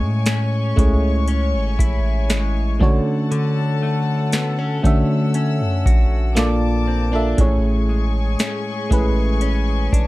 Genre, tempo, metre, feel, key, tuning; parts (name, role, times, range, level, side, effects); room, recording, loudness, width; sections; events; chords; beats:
contemporary R&B; 59 BPM; 4/4; straight; A major; A4 = 440 Hz
FM electric piano; accompaniment; 0.0-10.1 s; A3 to E5; -24 LUFS; right 1 dB; chorus
warm studio string section; sustained chords; 0.0-10.1 s; Bb3 to E6; -29 LUFS; left 3 dB
direct-recorded clean electric guitar; arpeggios; 0.0-10.1 s; A2 to F#4; -27 LUFS; left 3 dB; analog chorus, tape echo
long sustained 808-style bass; bass; 0.0-10.1 s; G#1 to D3; -20 LUFS; equal
booming analog drum machine; drums; 0.3-10.1 s; hi-hat, kick drum, snare drum; -18 LUFS; equal; overdrive
little or no reverb; dark, warm production; -16 LUFS; side -18 dB against mid
0.0-10.1 A section
0.0 Amaj7; 2.8 Dmaj7; 6.4 Bbmaj7; 7.4 Amaj7
0.27 1.28 2.30 | 3.32 4.33 5.35 6.37 | 7.38 8.40 9.42